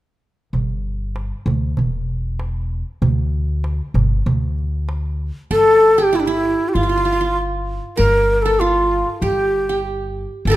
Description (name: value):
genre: Turkish makam ensemble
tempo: 97 BPM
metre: 4/4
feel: straight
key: G makam nikriz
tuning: A4 = 440 Hz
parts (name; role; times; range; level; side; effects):
- upright bass; bass; 0.5-10.6 s; E1 to D2; -21 LUFS; equal; none
- darbuka; percussion; 0.5-5.0 s; none; -22 LUFS; right 3 dB; none
- breathy ney; melody; 5.5-10.6 s; D4 to Bb4; -15 LUFS; left 1 dB; none
- qanun; second line; 5.5-10.6 s; E4 to Bb4; -22 LUFS; right 4 dB; none
room: moderate recital hall reverb, RT60 1.7 s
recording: minimal, uncompressed stereo recording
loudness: -16 LUFS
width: side -15 dB against mid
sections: 0.5-5.5 A section; 5.5-10.6 B section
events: none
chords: none